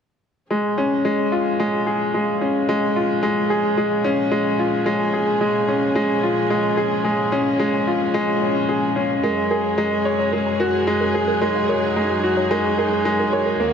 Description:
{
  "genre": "electronica",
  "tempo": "110 BPM",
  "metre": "4/4",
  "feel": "straight",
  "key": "Bb minor",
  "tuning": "A4 = 440 Hz",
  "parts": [
    { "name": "rich studio string section", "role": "sustained chords", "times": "0.5-13.7 s", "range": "Eb2 to Ab4", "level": "-28 LUFS", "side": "equal", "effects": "none" },
    { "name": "bright grand piano", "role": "riff", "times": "0.5-13.7 s", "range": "Ab3 to Db5", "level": "-18 LUFS", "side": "equal", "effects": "digital delay" },
    { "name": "soft round pluck", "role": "arpeggios", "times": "9.2-13.7 s", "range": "Bb4 to Bb5", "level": "-27 LUFS", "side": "right 4 dB", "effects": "chorus, digital delay" }
  ],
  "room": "moderate lush hall reverb, RT60 2.5 s",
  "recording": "none",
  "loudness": "-18 LUFS",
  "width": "side -7 dB against mid",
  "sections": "0.5-13.7 A section",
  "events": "fade-in on string section 0.5-13.7",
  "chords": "0.5 Bbm7; 9.2 Gbsus2"
}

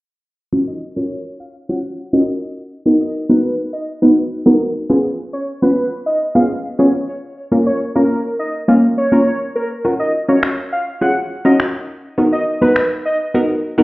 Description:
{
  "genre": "dance-pop",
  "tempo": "103 BPM",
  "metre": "4/4",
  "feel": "straight",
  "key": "F# major",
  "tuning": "A4 = 441 Hz",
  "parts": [
    { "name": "analog pluck", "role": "accompaniment", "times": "0.5-13.8 s", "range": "A#3 to C#5", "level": "-14 LUFS", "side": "equal", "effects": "chorus, low-pass filter" },
    { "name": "fat analog lead", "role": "melody", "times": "0.7-13.2 s", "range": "A#4 to F#5", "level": "-20 LUFS", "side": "equal", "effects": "low-pass filter, analog delay" },
    { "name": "electronic finger snaps", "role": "drums", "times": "10.4-12.9 s", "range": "none", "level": "-21 LUFS", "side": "equal", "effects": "none" }
  ],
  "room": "wet studio reverb, RT60 0.6 s",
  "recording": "heard muffled through a wall, stone room reverb, EQ, nothing above 10.9 kHz",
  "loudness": "-14 LUFS",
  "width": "side -20 dB against mid",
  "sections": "0.5-13.8 A section",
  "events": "filter sweep 0.5-13.8",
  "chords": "0.5 F#maj7; 2.9 Bmaj7; 4.9 C#7; 7.5 A#m; 9.8 F#maj7; 12.2 Bmaj7"
}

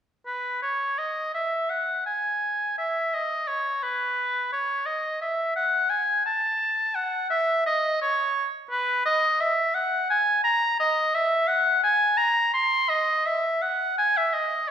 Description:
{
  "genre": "classical, baroque-style fantasia for unaccompanied oboe",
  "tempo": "85 BPM",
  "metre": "3/4",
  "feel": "rubato",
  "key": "E major",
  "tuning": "A4 = 440 Hz",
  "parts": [
    { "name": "bright oboe", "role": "solo", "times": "0.3-14.7 s", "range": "B4 to C6", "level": "-22 LUFS", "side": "equal", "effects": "none" }
  ],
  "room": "wet recital hall reverb, RT60 1.3 s",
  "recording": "recorded in a church or concert hall",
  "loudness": "-22 LUFS",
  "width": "side -8 dB against mid",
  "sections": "0.3-14.7 A section",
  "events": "none",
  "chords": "none"
}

